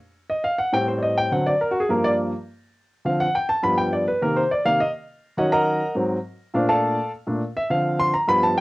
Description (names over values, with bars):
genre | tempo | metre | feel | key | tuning
jazz | 206 BPM | 4/4 | straight | unclear | A4 = 438 Hz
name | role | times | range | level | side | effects
warm concert grand piano | solo | 0.3-8.6 s | G2 to C6 | -19 LUFS | equal | cassette tape
room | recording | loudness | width
moderate studio reverb, RT60 0.6 s | home recording on cassette | -20 LUFS | side -20 dB against mid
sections
0.0-8.6 A section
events
grand piano solo 0.0-8.6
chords
0.0 N.C.; 0.7 Am7b5; 1.3 Daug7; 1.9 Gm7; 3.1 Dm7; 3.6 G7; 4.2 Cm7; 5.4 Ebm7; 6.0 Ab7; 6.5 Bbmaj9; 7.7 Dm7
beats
0.15 0.44 | 0.73 1.02 1.31 1.61 | 1.90 2.19 2.48 2.77 | 3.06 3.35 3.64 3.93 | 4.22 4.51 4.80 5.09 | 5.38 5.67 5.96 6.26 | 6.55 6.84 7.13 7.42 | 7.71 8.00 8.29 8.58